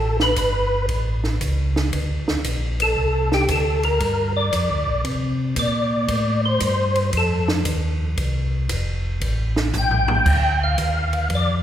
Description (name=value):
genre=soul jazz organ trio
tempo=115 BPM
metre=4/4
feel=swing 67% on 8ths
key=unclear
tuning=A4 = 440 Hz
part: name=percussive tonewheel organ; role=melody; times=0.0-11.5 s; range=G4 to G5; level=-21 LUFS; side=equal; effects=slow rotary speaker, chorus vibrato
part: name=mellow tonewheel organ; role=bass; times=0.0-11.6 s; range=F1 to C3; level=-22 LUFS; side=equal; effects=slow rotary speaker
part: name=compact cocktail drum kit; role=drums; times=0.2-11.5 s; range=crash cymbal, hi-hat, kick drum, ride cymbal, snare drum, toms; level=-26 LUFS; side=right 1 dB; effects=none
room=wet concert hall reverb, RT60 2.0 s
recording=recorded in a church or concert hall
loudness=-18 LUFS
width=side -10 dB against mid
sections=0.0-10.3 A section; 10.3-11.6 A section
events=tonewheel organ solo 0.0-11.6; drum fill 9.7-10.3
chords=0.0 A7; 1.9 D5; 4.0 Gm7; 5.0 Bbadd9; 6.1 F7; 9.2 Gmadd9/A; 10.3 Dm